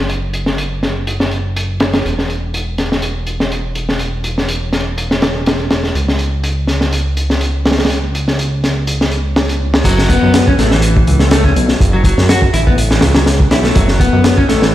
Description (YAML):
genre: breakbeat, breaks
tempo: 123 BPM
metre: 4/4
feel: swing 53% on 16ths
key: F# minor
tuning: A4 = 440 Hz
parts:
  - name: fat analog bass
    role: bass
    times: 0.0-14.7 s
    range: E1 to F#2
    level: -16 LUFS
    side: equal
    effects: none
  - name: crunchy breakbeat drum kit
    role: drums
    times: 0.1-14.7 s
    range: crash cymbal, hi-hat, kick drum, snare drum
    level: -14 LUFS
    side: equal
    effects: low-pass filter on kick, low-pass filter on hats, low-pass filter on cymbals, low-pass filter on snare, low-pass filter on room
  - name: electric guitar at the edge of break-up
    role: riff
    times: 9.8-14.7 s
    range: E3 to F#4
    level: -15 LUFS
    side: left 1 dB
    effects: dub echo
room: light reverb, small room ambience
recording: played on a big sound system in a bare room, stone room reverb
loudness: -12 LUFS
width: side -13 dB against mid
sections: 0.0-9.9 A section; 9.9-14.7 B section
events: drop 9.9-14.7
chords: 0.0 N.C.; 9.9 F#m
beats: | 0.10 0.58 1.07 1.56 | 2.05 2.54 3.02 3.51 | 4.00 4.49 4.97 5.46 | 5.95 6.44 6.93 7.41 | 7.90 8.39 8.88 9.37 | 9.85 10.34 10.83 11.32 | 11.80 12.29 12.78 13.27 | 13.76 14.24 14.73